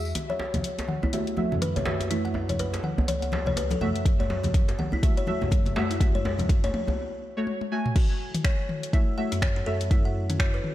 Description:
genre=afro house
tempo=123 BPM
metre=4/4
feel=swing 59% on 16ths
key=F# minor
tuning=A4 = 440 Hz
part: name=dark analog pad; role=sustained chords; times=0.0-10.7 s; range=E4 to A4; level=-46 LUFS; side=equal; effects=none
part: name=warm sub bass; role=bass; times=0.0-10.6 s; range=C#2 to F#2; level=-31 LUFS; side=equal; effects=tube saturation, sidechain pumping
part: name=buzzing kalimba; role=arpeggios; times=0.2-10.6 s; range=C#4 to F#5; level=-32 LUFS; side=left 2 dB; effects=sidechain pumping, low-pass filter, tape echo
part: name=afro-pop drum kit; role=drums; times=0.2-10.7 s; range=crash cymbal, finger snaps, hi-hat, toms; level=-33 LUFS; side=left 1 dB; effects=low-pass filter on hats, studio reverb, low-pass filter on toms, low-pass filter on cymbals, low-pass filter on snare
part: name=djembe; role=percussion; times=0.2-7.0 s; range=none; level=-32 LUFS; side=right 1 dB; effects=none
part: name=congas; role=percussion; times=0.3-7.0 s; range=none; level=-33 LUFS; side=left 1 dB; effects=none
part: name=deep mellow chord stab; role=stabs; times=1.1-10.0 s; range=A3 to G#5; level=-32 LUFS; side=right 1 dB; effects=chorus, sidechain pumping, tape echo
part: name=electronic kick drum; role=drums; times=4.1-10.5 s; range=none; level=-23 LUFS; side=equal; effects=studio reverb
room=light reverb, small room ambience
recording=dark, warm production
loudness=-23 LUFS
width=side -14 dB against mid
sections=0.2-8.0 A section; 8.0-10.7 B section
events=build-up 0.2-8.0; drum fill 0.2-7.0, 7.5-8.0; filter sweep on kalimba 0.2-8.0; break 7.0-8.0; drop 8.0-10.7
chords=0.2 F#m7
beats=| 0.15 0.64 1.13 1.62 | 2.10 2.59 3.08 3.57 | 4.06 4.54 5.03 5.52 | 6.01 6.50 6.98 7.47 | 7.96 8.45 8.93 9.42 | 9.91 10.40

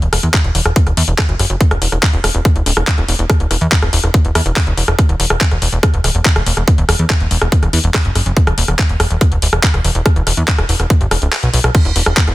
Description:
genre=psychedelic trance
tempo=142 BPM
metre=4/4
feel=straight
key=unclear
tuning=A4 = 436 Hz
part: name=plucky analog bass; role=bass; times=0.0-12.3 s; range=D1 to E2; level=-15 LUFS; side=equal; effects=none
part: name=garage drum kit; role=drums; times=0.0-12.3 s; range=crash cymbal, handclaps, hi-hat, rim click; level=-17 LUFS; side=left 1 dB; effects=soft clipping on snare, studio ambience
part: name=electronic kick drum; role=drums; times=0.3-12.3 s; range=none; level=-13 LUFS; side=equal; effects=studio ambience
room=little or no reverb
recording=dense, heavily limited modern master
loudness=-11 LUFS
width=side -17 dB against mid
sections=0.0-12.3 A section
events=kick drops out 11.3-11.7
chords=none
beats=0.34 0.76 1.18 | 1.61 2.03 2.45 2.87 | 3.30 3.72 4.14 4.56 | 4.99 5.41 5.83 6.25 | 6.68 7.10 7.52 7.94 | 8.37 8.79 9.21 9.63 | 10.06 10.48 10.90 11.32 | 11.75 12.17

